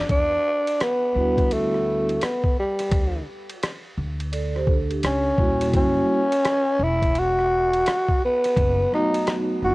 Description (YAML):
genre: hip hop, jazz-hop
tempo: 85 BPM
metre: 4/4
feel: swing 65% on 16ths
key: E minor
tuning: A4 = 440 Hz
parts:
  - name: growling tenor saxophone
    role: melody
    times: 0.0-9.7 s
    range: G3 to F#4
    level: -21 LUFS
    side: equal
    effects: cassette tape, tape echo
  - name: upright bass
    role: bass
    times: 0.1-9.7 s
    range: D#1 to E2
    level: -27 LUFS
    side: equal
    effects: none
  - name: boom bap sampler-style drum kit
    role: drums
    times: 0.1-9.5 s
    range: hi-hat, kick drum, ride cymbal, rim click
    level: -25 LUFS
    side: equal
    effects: none
  - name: vibraphone with soft mallets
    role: accompaniment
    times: 1.1-9.7 s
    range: F#3 to D5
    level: -24 LUFS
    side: right 1 dB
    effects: cassette tape
room: light reverb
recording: home recording on cassette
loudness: -19 LUFS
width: side -22 dB against mid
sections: 0.1-9.7 A section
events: none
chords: 0.1 Em7; 2.9 D5; 5.0 D#7b9; 5.7 F#7b9; 8.6 B7/F#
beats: | 0.09 0.80 1.50 2.21 | 2.92 3.62 4.33 5.03 | 5.74 6.45 7.15 7.86 | 8.56 9.27